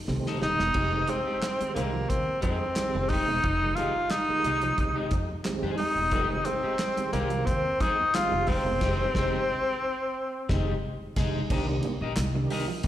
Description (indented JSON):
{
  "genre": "funk",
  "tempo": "89 BPM",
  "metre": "4/4",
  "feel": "straight",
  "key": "unclear",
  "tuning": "A4 = 442 Hz",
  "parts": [
    { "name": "electric guitar at the edge of break-up", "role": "accompaniment", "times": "0.1-12.9 s", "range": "Ab3 to Eb5", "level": "-36 LUFS", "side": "left 5 dB", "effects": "wide subtle chorus, slapback echo" },
    { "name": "tonewheel organ", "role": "stabs", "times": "0.1-12.6 s", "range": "Eb3 to Eb4", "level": "-35 LUFS", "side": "right 4 dB", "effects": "chorus vibrato, slow rotary speaker, slapback echo" },
    { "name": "upright bass", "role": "bass", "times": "0.1-12.9 s", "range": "Eb1 to F2", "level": "-31 LUFS", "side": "equal", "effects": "none" },
    { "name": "warm soul drum kit", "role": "drums", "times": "0.1-12.9 s", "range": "crash cymbal, handclaps, hi-hat, kick drum, snare drum", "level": "-32 LUFS", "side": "equal", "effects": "none" },
    { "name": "breathy tenor saxophone", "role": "melody", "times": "0.4-10.8 s", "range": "Bb3 to F4", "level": "-27 LUFS", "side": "equal", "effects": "slapback echo" },
    { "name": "electric guitar with an envelope filter", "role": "riff", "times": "0.4-12.8 s", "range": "F3 to C4", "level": "-38 LUFS", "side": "right 6 dB", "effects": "analog chorus, slapback echo" }
  ],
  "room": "light reverb, studio reverb",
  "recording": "live gig heard through the venue's PA, recital hall reverb",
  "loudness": "-25 LUFS",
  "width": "side -12 dB against mid",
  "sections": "0.8-11.5 A section; 11.5-12.9 B section",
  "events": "drum fill 0.1-0.8; band accent 8.8-11.5",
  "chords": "0.0 F9 (rootless); 0.8 Fm9; 11.5 Cm7",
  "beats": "0.08 | 0.75 1.43 2.10 2.77 | 3.44 4.11 4.78 5.46 | 6.13 6.80 7.47 8.14 | 8.81 9.49 10.16 10.83 | 11.50 12.17 12.84"
}